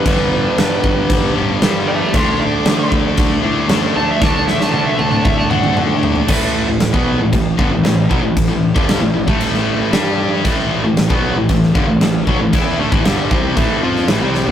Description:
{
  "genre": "hard rock",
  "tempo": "115 BPM",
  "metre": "4/4",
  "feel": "straight",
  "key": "A dorian",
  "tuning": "A4 = 440 Hz",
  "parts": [
    { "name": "lead guitar through a small cranked amp", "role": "melody", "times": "0.0-5.8 s", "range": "B4 to D6", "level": "-20 LUFS", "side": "right 2 dB", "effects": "overdrive" },
    { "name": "distorted electric guitar", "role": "riff", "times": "0.0-14.5 s", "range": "G2 to G4", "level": "-19 LUFS", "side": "right 2 dB", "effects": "distortion" },
    { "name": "tight distorted guitar", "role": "riff", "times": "0.0-14.5 s", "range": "G2 to G4", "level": "-20 LUFS", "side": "left 5 dB", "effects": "distortion" },
    { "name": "fuzz picked electric bass", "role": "bass", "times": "0.1-14.5 s", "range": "G1 to D3", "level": "-22 LUFS", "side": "left 1 dB", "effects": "overdrive" },
    { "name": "huge arena drum kit", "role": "drums", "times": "0.1-14.5 s", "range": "crash cymbal, kick drum, snare drum, toms", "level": "-17 LUFS", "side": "equal", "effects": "none" }
  ],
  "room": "moderate small room reverb, RT60 0.5 s",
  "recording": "rough rehearsal-room recording, tube saturation",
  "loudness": "-13 LUFS",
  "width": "side -10 dB against mid",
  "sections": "0.0-6.3 A section; 6.3-14.5 B section",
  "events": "lead electric guitar solo 0.0-6.3; drum fill 4.2-6.3, 14.4",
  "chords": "0.0 G; 2.1 D5; 6.3 A5; 9.9 G5; 10.5 Am",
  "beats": "| 0.05 0.57 1.09 1.62 | 2.14 2.66 3.18 3.70 | 4.22 4.74 5.26 5.78 | 6.29 6.82 7.33 7.85 | 8.37 8.89 9.41 9.93 | 10.45 10.97 11.49 12.01 | 12.53 13.05 13.57 14.09"
}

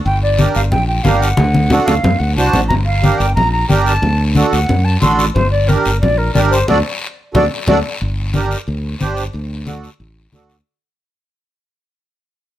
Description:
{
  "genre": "latin, cumbia",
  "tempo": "181 BPM",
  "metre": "4/4",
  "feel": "straight",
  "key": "G harmonic minor",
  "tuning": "A4 = 439 Hz",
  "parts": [
    { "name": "silver concert flute", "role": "melody", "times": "0.1-7.8 s", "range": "Bb4 to C6", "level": "-18 LUFS", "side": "equal", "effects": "plate reverb" },
    { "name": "modern bright fingered electric bass", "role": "bass", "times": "0.1-10.6 s", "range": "G1 to F#2", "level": "-16 LUFS", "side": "equal", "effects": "none" },
    { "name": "congas", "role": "percussion", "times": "0.1-10.5 s", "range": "none", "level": "-18 LUFS", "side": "left 1 dB", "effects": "none" },
    { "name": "guiro", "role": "percussion", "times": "0.1-10.7 s", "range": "none", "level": "-27 LUFS", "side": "left 4 dB", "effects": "none" },
    { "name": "accordion", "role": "accompaniment", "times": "0.4-10.6 s", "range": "D4 to C5", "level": "-18 LUFS", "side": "right 4 dB", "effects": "light tremolo tuning" }
  ],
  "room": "light reverb",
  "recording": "none",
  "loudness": "-12 LUFS",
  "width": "side -13 dB against mid",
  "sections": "0.0-8.0 A section; 8.0-10.7 B section",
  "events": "drum fill 1.4-2.7, 7.5-8.0; band accent 6.7-8.0; fade-out 8.0-10.7",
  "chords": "0.1 Gm; 1.4 D7; 2.7 Gm; 4.0 D; 5.4 Gm; 6.7 D; 8.0 Gm; 9.3 D",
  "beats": "| 0.06 0.39 0.72 1.05 | 1.38 1.72 2.05 2.38 | 2.71 3.04 3.37 3.70 | 4.03 4.36 4.70 5.03 | 5.36 5.69 6.02 6.35 | 6.68 7.01 7.34 7.67 | 8.01 8.34 8.67 9.00 | 9.33 9.67 10.00 10.33"
}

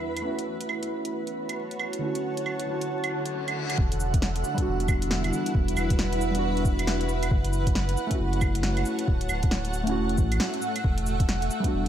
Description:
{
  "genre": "future garage",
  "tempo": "136 BPM",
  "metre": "4/4",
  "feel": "swing 62% on 16ths",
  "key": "E dorian",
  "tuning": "A4 = 440 Hz",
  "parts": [
    { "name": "muted felt-like synth keys", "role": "accompaniment", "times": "0.0-11.9 s", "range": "E2 to F#4", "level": "-31 LUFS", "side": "right 1 dB", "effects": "chorus, sidechain pumping, tape echo" },
    { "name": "granular cloud pad", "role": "sustained chords", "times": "0.0-11.9 s", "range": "D3 to A5", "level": "-30 LUFS", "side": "right 1 dB", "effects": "built-in reverb, sidechain pumping" },
    { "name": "garage drum kit", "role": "drums", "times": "0.2-11.9 s", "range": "cabasa, claves, hi-hat, snare drum", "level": "-32 LUFS", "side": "right 1 dB", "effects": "small room ambience" },
    { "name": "reverse cymbal", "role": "sound effects", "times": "3.2-3.8 s", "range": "none", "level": "-38 LUFS", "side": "left 7 dB", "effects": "none" },
    { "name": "warm sub bass", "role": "bass", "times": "3.8-11.9 s", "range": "D1 to A1", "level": "-28 LUFS", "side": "equal", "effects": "none" },
    { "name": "electronic kick drum", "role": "drums", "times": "3.8-11.7 s", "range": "none", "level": "-25 LUFS", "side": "equal", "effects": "overdrive, small room ambience" }
  ],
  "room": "moderate lush hall reverb, RT60 1.5 s, digital ambience",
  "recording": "dreamy mix soaked in reverb, vinyl crackle",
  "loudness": "-24 LUFS",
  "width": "side -10 dB against mid",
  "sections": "0.0-3.8 A section; 3.8-11.9 B section",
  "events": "reverse cymbal 3.2-3.8",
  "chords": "0.3 F#m7; 2.0 Dmaj7; 3.8 Em7; 7.3 F#m7; 9.1 Dmaj7; 10.8 Em7",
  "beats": "| 0.25 0.69 1.14 1.58 | 2.02 2.46 2.90 3.34 | 3.78 4.22 4.67 5.11 | 5.55 5.99 6.43 6.87 | 7.31 7.75 8.20 8.64 | 9.08 9.52 9.96 10.40 | 10.84 11.28 11.72"
}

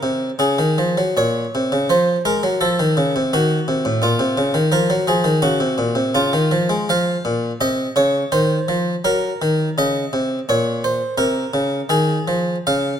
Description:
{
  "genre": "classical, baroque-style suite movement for harpsichord",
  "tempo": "84 BPM",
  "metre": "4/4",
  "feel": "rubato",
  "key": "unclear",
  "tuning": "A4 = 440 Hz",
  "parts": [
    { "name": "harpsichord", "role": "solo", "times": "0.0-13.0 s", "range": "A2 to F5", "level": "-16 LUFS", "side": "equal", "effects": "none" }
  ],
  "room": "light reverb",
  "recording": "close, detailed microphones",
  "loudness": "-16 LUFS",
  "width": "side -8 dB against mid",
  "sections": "0.0-13.0 A section",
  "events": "none",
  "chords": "0.0 Db; 1.2 Bbm; 2.6 F7 (rootless); 4.0 Bbm; 6.9 Db; 8.3 Cdim/Eb; 9.8 Bbm; 11.2 Ab/C",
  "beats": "0.40 | 1.18 1.91 2.62 3.31 | 4.02 4.73 5.43 6.14 | 6.89 7.60 8.32 9.03 | 9.77 10.48 11.18 11.89 | 12.66"
}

